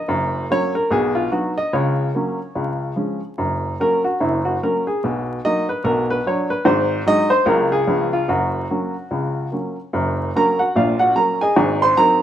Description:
jazz, stride piano; 146 BPM; 4/4; swing 60% on 8ths; F# major; A4 = 435 Hz
warm upright piano; solo; 0.0-12.2 s; F#1 to B#5; -17 LUFS; equal
moderate stone room reverb, RT60 1.0 s; band playing live in one room, vinyl crackle; -17 LUFS; side -10 dB against mid
0.0-9.9 A section; 9.9-12.2 A section
0.1 F#; 0.9 B; 1.7 F#/C#; 2.6 C#; 3.4 F#; 5.0 Bmaj7; 5.8 Bm; 6.7 G#7; 7.5 F#/C#; 7.9 C#7; 8.3 F#; 10.8 F#/A#; 11.6 G#7

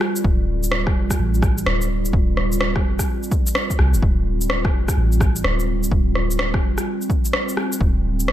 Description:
future garage; 127 BPM; 4/4; swing 64% on 16ths; D minor; A4 = 444 Hz
warbly tape-like pad; sustained chords; 0.0-8.3 s; G3 to A4; -25 LUFS; right 2 dB; chorus, built-in reverb, sidechain pumping
electronic rim click and shaker; drums; 0.0-8.3 s; -24 LUFS; equal
soft 808-style bass; bass; 0.2-8.3 s; D1 to C2; -21 LUFS; equal; tube saturation, sidechain pumping
electronic kick drum; drums; 0.2-7.9 s; -20 LUFS; equal; overdrive
light reverb; -17 LUFS; side -12 dB against mid
0.0-8.3 A section
0.0 Dm7

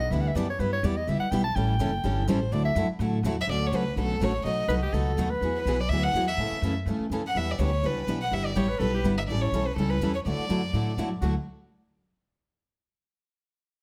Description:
acoustic string swing (jazz manouche); 248 BPM; 4/4; swing 55% on 8ths; D major; A4 = 439 Hz
clear soprano saxophone; second line; 0.0-5.8, 8.6-9.1, 11.2-11.3 s; F#4 to A5; -33 LUFS; equal
upright bass; bass; 0.0-11.3 s; F#1 to A2; -31 LUFS; equal
picked steel-string acoustic guitar; accompaniment; 0.1-11.3 s; B2 to A4; -33 LUFS; equal
picked steel-string acoustic guitar; accompaniment; 0.1-11.3 s; B2 to B4; -36 LUFS; equal
warm violin; melody; 3.4-10.9 s; A4 to F#5; -32 LUFS; equal; slapback echo
moderate studio reverb, RT60 0.9 s; -27 LUFS; mono
0.0-3.5 A section; 3.5-11.2 B section
soprano saxophone solo 0.0-3.5
0.0 Em7; 0.6 G6; 1.6 A7; 2.5 Dadd9; 3.5 Dmaj7; 4.4 B7; 5.4 Eadd9; 6.4 A; 7.3 Em7; 8.3 G6; 9.3 A7; 10.3 Dadd9

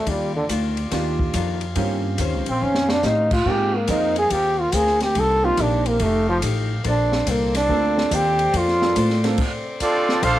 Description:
jazz, big band swing; 142 BPM; 4/4; swing 66% on 8ths; Bb major; A4 = 440 Hz
warm trombone; melody; 0.0-9.3 s; D3 to A4; -20 LUFS; equal; cassette tape
warm saxophone section; sustained chords; 0.0-10.4 s; C3 to F5; -33 LUFS; left 1 dB; cassette tape
upright bass; bass; 0.0-10.4 s; F1 to A2; -24 LUFS; equal
archtop guitar, miked and amplified; accompaniment; 0.1-10.4 s; C3 to C5; -30 LUFS; left 10 dB; cassette tape
open jazz drum kit; drums; 0.1-10.4 s; crash cymbal, hi-hat, kick drum, ride cymbal, snare drum; -27 LUFS; equal
warm concert grand piano; accompaniment; 0.9-9.4 s; Bb3 to Bb4; -28 LUFS; right 9 dB; cassette tape, plate reverb
bright trumpet section; melody; 9.8-10.4 s; C4 to F5; -18 LUFS; equal; cassette tape
muted trombone section; second line; 9.8-10.4 s; F3 to F4; -26 LUFS; right 10 dB; cassette tape
moderate booth ambience, RT60 0.3 s; home recording on cassette; -18 LUFS; side -13 dB against mid
0.0-10.2 A section
trombone solo 0.0-10.2; drum fill 2.6-3.0; stop 9.4-10.2
0.1 Ebmaj9; 1.8 Eb13; 3.5 Ab69; 5.2 Cm7; 6.0 F9; 6.9 Bbmaj9

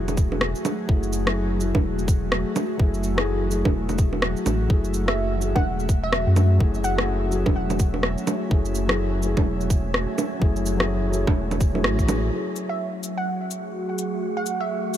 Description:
future garage; 126 BPM; 4/4; swing 60% on 16ths; F# minor; A4 = 440 Hz
felt-muted upright piano; accompaniment; 0.0-15.0 s; F#3 to G#4; -29 LUFS; left 3 dB; sidechain pumping, low-pass filter, tape echo
airy breathy pad; sustained chords; 0.0-15.0 s; F#3 to E5; -29 LUFS; right 1 dB; chorus, sidechain pumping
warm sub bass; bass; 0.0-12.3 s; E1 to F#2; -25 LUFS; equal; tube saturation, sidechain pumping
electronic bongos, shaker, rim click and cabasa; drums; 0.1-15.0 s; -26 LUFS; right 2 dB
electronic kick drum; drums; 0.2-12.1 s; -20 LUFS; equal
wind-like tuned noise texture; texture; 5.9-15.0 s; C#4 to F#5; -36 LUFS; right 2 dB; built-in reverb
glassy wavetable pluck; melody; 5.1-7.2, 12.7-14.9 s; E5 to F#5; -29 LUFS; right 2 dB; chorus, digital delay
light reverb, digital ambience; -20 LUFS; side -11 dB against mid
0.0-12.3 A section; 12.3-15.0 B section
band accent 11.8; filter sweep on analog synth pad 12.3-15.0
0.0 F#m9

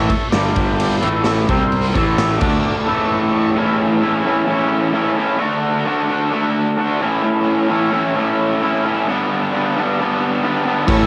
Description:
garage rock duo or trio; 131 BPM; 4/4; straight; A mixolydian; A4 = 440 Hz
overdriven combo organ; sustained chords; 0.0-3.5, 10.9-11.1 s; C4 to C#6; -27 LUFS; equal
raw garage guitar; riff; 0.0-11.1 s; G2 to F#4; -18 LUFS; equal; overdrive
fuzz picked electric bass; bass; 0.0-2.6, 10.9-11.1 s; G1 to D2; -23 LUFS; equal; overdrive
raw garage drum kit; drums; 0.1-2.5, 10.9-11.0 s; crash cymbal, kick drum, ride cymbal, snare drum; -25 LUFS; equal; cassette tape
light reverb, studio ambience; home recording on cassette; -17 LUFS; mono
0.0-3.6 A section; 3.6-11.1 B section
transistor combo organ fill 2.9-3.6
0.3 G5; 1.0 A; 1.5 C5; 2.0 A; 2.4 D5; 2.9 A; 5.4 D; 7.0 A; 9.1 G

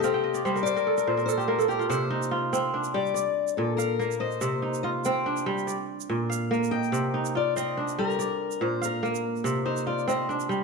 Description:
west african traditional, West African string and xylophone music; 96 BPM (dotted quarters); 12/8; straight; C dorian; A4 = 439 Hz
fingerpicked steel-string acoustic guitar; melody; 0.0-10.3 s; G4 to G5; -29 LUFS; left 11 dB
kora; arpeggios; 0.0-10.6 s; Bb2 to G5; -26 LUFS; right 2 dB
egg shaker; percussion; 0.0-10.6 s; -40 LUFS; right 19 dB
wet echo chamber reverb, RT60 1.4 s; 1960s-style stereo with parts hard left and right; -24 LUFS; side -4 dB against mid
0.0-10.6 A section
kora fill 0.0-1.9; steel-string acoustic guitar solo 0.0-10.6
0.0 Cm; 0.7 N.C.; 1.9 Cm; 3.2 Bb; 4.4 Cm; 5.7 Bb; 6.9 Cm; 8.2 Bb; 9.5 Cm

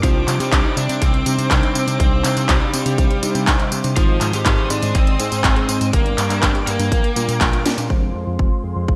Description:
italo disco; 122 BPM; 4/4; straight; C minor; A4 = 444 Hz
lead guitar through a small cranked amp; melody; 0.0-7.4 s; F3 to D5; -26 LUFS; equal; overdrive, delay
warm studio string section; sustained chords; 0.0-9.0 s; Ab4 to Eb6; -32 LUFS; equal; low-pass filter
unison pluck; arpeggios; 0.0-7.8 s; Bb3 to Eb5; -32 LUFS; equal
mellow tine electric piano; stabs; 0.0-9.0 s; G2 to C5; -28 LUFS; equal
fat analog bass; bass; 0.0-9.0 s; F1 to C3; -25 LUFS; equal
electronic kick drum; drums; 0.0-9.0 s; -20 LUFS; equal; overdrive
house drum kit; drums; 0.0-7.9 s; handclaps, hi-hat, snare drum, tambourine; -25 LUFS; equal; overdrive, gated reverb
moderate lush hall reverb, RT60 1.8 s, digital ambience; bright 1980s-style digital production; -18 LUFS; mono
0.0-7.9 A section; 7.9-9.0 B section
drum fill 7.7; filter sweep on string section 7.9-9.0
0.0 Cmadd9; 4.0 Ab; 5.9 Gm; 6.9 Bb6; 7.9 Fm

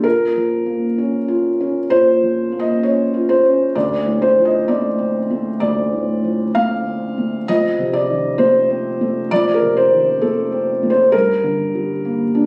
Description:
neoclassical minimalist piano; 65 BPM; 4/4; rubato; A4 = 440 Hz
felt-muted upright piano; solo; 0.0-12.5 s; D2 to F5; -17 LUFS; equal
light reverb; recorded on a phone in the room, studio reverb, compression; -17 LUFS; mono
0.0-12.5 A section
0.0 Bbm; 3.8 Dm7; 7.5 F7; 11.1 Gm

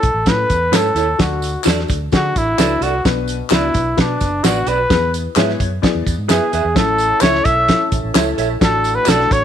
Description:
uptempo 1960s-style soul; 130 BPM; 4/4; straight; A major; A4 = 440 Hz
mellow trumpet; melody; 0.0-9.4 s; D4 to E5; -17 LUFS; equal
warm upright piano; accompaniment; 0.0-9.4 s; A2 to D5; -23 LUFS; left 13 dB
vintage muted fingered electric bass; bass; 0.0-9.4 s; F#1 to D3; -23 LUFS; right 1 dB
warm soul drum kit; drums; 0.0-9.4 s; hi-hat, kick drum, snare drum; -17 LUFS; right 1 dB
tambourine and handclaps; percussion; 0.3-9.2 s; -27 LUFS; left 4 dB
electric guitar through a small old amp; stabs; 0.7-9.2 s; E4 to E5; -23 LUFS; right 13 dB; slapback echo
tonewheel organ; sustained chords; 6.7-9.4 s; A3 to A4; -26 LUFS; right 1 dB; chorus vibrato, wide subtle chorus
light reverb, small room ambience; 1960s-style stereo with parts hard left and right; -13 LUFS; side -9 dB against mid
0.0-9.4 A section
trumpet solo 0.0-9.4
0.0 A; 1.2 D; 3.1 Bm; 4.9 E; 6.8 A; 8.6 D/A

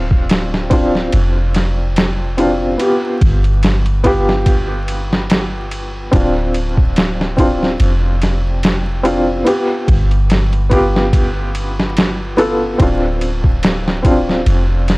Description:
trip hop; 72 BPM; 4/4; swing 55% on 16ths; D dorian; A4 = 440 Hz
felt-muted upright piano; accompaniment; 0.0-15.0 s; B3 to A4; -17 LUFS; equal; tremolo, vintage 12-bit sampler grit, tape echo
soft 808-style bass; bass; 0.0-15.0 s; D1 to G1; -17 LUFS; equal; tube saturation
boom bap sampler-style drum kit; drums; 0.1-15.0 s; kick drum, ride cymbal, snare drum; -17 LUFS; equal
small room ambience; dry, gritty hardware recording, vinyl crackle; -12 LUFS; side -24 dB against mid
0.0-15.0 A section
0.0 Dm7; 2.8 G7; 6.1 Dm7; 9.5 G7; 12.8 Dm7

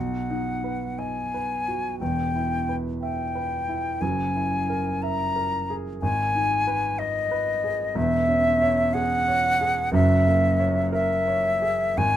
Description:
classical, romantic duo for flute and grand piano; 60 BPM (dotted quarters); 6/8; rubato; A4 = 441 Hz
mellow silver concert flute; melody; 0.0-12.2 s; D#5 to A#5; -24 LUFS; left 1 dB
warm baby grand piano; accompaniment; 0.0-12.2 s; E1 to E5; -25 LUFS; right 1 dB
light reverb; -22 LUFS; side -11 dB against mid
0.0-12.2 A section
0.0 B; 2.0 Em; 4.0 F#9; 6.0 G#m; 8.0 C#m/E; 9.9 F#9

